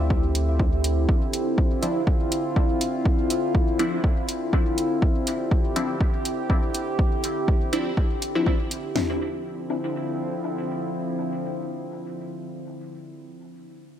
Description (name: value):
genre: dub techno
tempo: 122 BPM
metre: 4/4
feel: swing 55% on 16ths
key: D minor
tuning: A4 = 439 Hz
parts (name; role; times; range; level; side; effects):
- warbly tape-like pad; sustained chords; 0.0-12.9 s; D3 to G4; -27 LUFS; equal; chorus, built-in reverb, sidechain pumping
- filtered dub chord stab; stabs; 0.0-12.9 s; F3 to E4; -29 LUFS; left 1 dB; phaser, dub echo
- round analog bass; bass; 0.0-1.1 s; D2; -23 LUFS; equal; sidechain pumping
- punchy analog drum machine; drums; 0.1-9.1 s; hi-hat, kick drum, snare drum, toms; -22 LUFS; equal; none
- electronic hi-hat; drums; 0.3-8.8 s; none; -30 LUFS; right 1 dB; overdrive
room: light reverb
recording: none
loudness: -22 LUFS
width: side -10 dB against mid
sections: 0.0-9.0 A section; 9.0-12.9 B section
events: none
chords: 0.0 Dm9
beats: 0.10 0.60 | 1.09 1.58 2.07 2.56 | 3.06 3.55 4.04 4.53 | 5.02 5.51 6.01 6.50 | 6.99 7.48 7.97 8.46 | 8.96 9.45 9.94 10.43 | 10.92 11.42 11.91 12.40